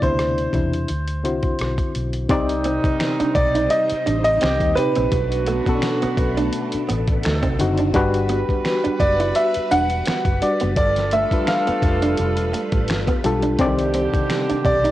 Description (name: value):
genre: R&B, neo-soul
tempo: 85 BPM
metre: 4/4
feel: swing 55% on 16ths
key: G major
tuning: A4 = 442 Hz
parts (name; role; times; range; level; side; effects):
- clear grand piano; melody; 0.0-14.9 s; B4 to F#5; -22 LUFS; equal; cassette tape
- bright reed electric piano; accompaniment; 0.0-14.9 s; B2 to D5; -24 LUFS; left 2 dB; overdrive, fast tremolo, cassette tape
- vintage muted fingered electric bass; bass; 0.0-14.9 s; E1 to E2; -24 LUFS; equal; none
- dusty soul sampler-style drum kit; drums; 0.0-14.9 s; finger snaps, hi-hat, kick drum, rim click, snare drum; -24 LUFS; equal; cassette tape
- phased string machine; sustained chords; 2.3-14.9 s; Bb2 to B4; -29 LUFS; equal; ensemble chorus, phaser, cassette tape
- mellow horn section; stabs; 2.3-14.9 s; D3 to B4; -27 LUFS; right 3 dB; cassette tape, analog delay
- archtop guitar, miked and amplified; second line; 2.7-14.9 s; A3 to E4; -26 LUFS; right 4 dB; cassette tape
room: light reverb, digital ambience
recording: home recording on cassette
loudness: -17 LUFS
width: side -14 dB against mid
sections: 0.0-2.3 A section; 2.3-14.9 B section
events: none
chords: 0.0 Cmaj9; 0.9 D13; 2.3 Cmadd9; 4.4 Cm7; 5.1 Bm7; 7.2 D7b9; 7.9 Gmaj7; 10.8 G7; 13.6 Cmadd9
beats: 0.18 0.88 1.59 | 2.30 3.00 3.71 4.41 | 5.12 5.83 6.53 7.24 | 7.94 8.65 9.35 10.06 | 10.77 11.47 12.18 12.88 | 13.59 14.30